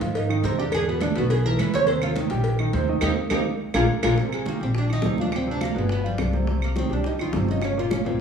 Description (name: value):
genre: Afro-Cuban jazz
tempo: 209 BPM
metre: 4/4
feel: straight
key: Eb major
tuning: A4 = 439 Hz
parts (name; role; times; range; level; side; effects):
- clear grand piano; accompaniment; 0.0-8.2 s; Bb2 to G5; -27 LUFS; right 2 dB; none
- upright bass; bass; 0.0-8.2 s; G1 to Ab2; -26 LUFS; left 1 dB; none
- cowbell and bongos; percussion; 0.0-8.2 s; none; -31 LUFS; left 3 dB; none
- oud; melody; 0.2-8.2 s; G3 to Db5; -27 LUFS; right 1 dB; none
- congas; percussion; 0.2-8.2 s; none; -30 LUFS; right 2 dB; none
- claves; percussion; 0.3-8.1 s; none; -35 LUFS; right 3 dB; none
room: wet large studio reverb, RT60 1.4 s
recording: band playing live in one room, studio ambience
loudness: -21 LUFS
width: side -7 dB against mid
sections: 0.0-4.2 A section; 4.2-8.2 B section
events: oud solo 0.0-4.2; band accent 3.0-4.2; drum fill 3.3-4.2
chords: 0.0 Fm7; 0.7 E5; 1.9 Eb6; 3.6 Bb7; 4.2 Eb69; 5.3 G7b9; 5.9 G7; 6.5 Cm; 7.6 Gdim